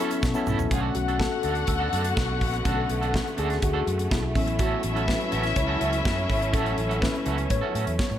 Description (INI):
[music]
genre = disco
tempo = 124 BPM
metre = 4/4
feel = straight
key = unclear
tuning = A4 = 440 Hz
[part]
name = electric guitar at the edge of break-up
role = accompaniment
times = 0.0-8.1 s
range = C#4 to A4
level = -33 LUFS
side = right 8 dB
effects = harmonic tremolo
[part]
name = tine electric piano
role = accompaniment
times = 0.0-8.2 s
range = D3 to C#5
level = -30 LUFS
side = left 4 dB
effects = phaser
[part]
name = rich studio string section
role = sustained chords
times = 0.0-8.2 s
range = D3 to C#6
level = -33 LUFS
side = equal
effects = none
[part]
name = modern studio drum kit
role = drums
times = 0.1-8.2 s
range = hi-hat, kick drum, snare drum, toms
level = -28 LUFS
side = right 1 dB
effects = gated reverb
[part]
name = egg shaker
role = percussion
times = 0.1-0.7 s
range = none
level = -46 LUFS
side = left 6 dB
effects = none
[part]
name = fingered electric bass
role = bass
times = 0.2-8.2 s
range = G#1 to B2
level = -29 LUFS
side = right 1 dB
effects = none
[part]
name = dark studio string section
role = second line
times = 0.7-8.2 s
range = B3 to F#5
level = -30 LUFS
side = left 3 dB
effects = none
[sound]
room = light reverb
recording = none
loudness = -23 LUFS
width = side -11 dB against mid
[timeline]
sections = 0.7-8.2 A section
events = drum fill 0.2-0.7; tine electric piano solo 0.7-8.2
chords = 0.0 B9sus4; 0.7 Bm7; 4.4 A6